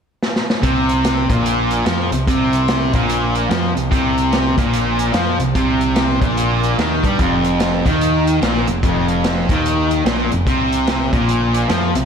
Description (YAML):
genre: blues rock power trio and southern rock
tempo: 147 BPM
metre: 4/4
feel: swing 62% on 8ths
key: unclear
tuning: A4 = 442 Hz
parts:
  - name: vintage drum kit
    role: drums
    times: 0.2-12.0 s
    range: hi-hat, kick drum, snare drum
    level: -20 LUFS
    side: equal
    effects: none
  - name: fuzz guitar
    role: riff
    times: 0.6-12.1 s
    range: F2 to G3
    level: -16 LUFS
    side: equal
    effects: distortion
  - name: growling picked electric bass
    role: bass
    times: 0.6-12.1 s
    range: F1 to G2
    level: -22 LUFS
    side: equal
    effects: overdrive
room: moderate lush hall reverb, RT60 1.9 s, studio reverb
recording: big arena sound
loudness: -14 LUFS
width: side -7 dB against mid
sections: 0.6-12.1 A section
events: drum fill 0.2-0.6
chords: 0.0 N.C.; 0.6 C5; 7.2 F7sus4; 10.5 Bbsus2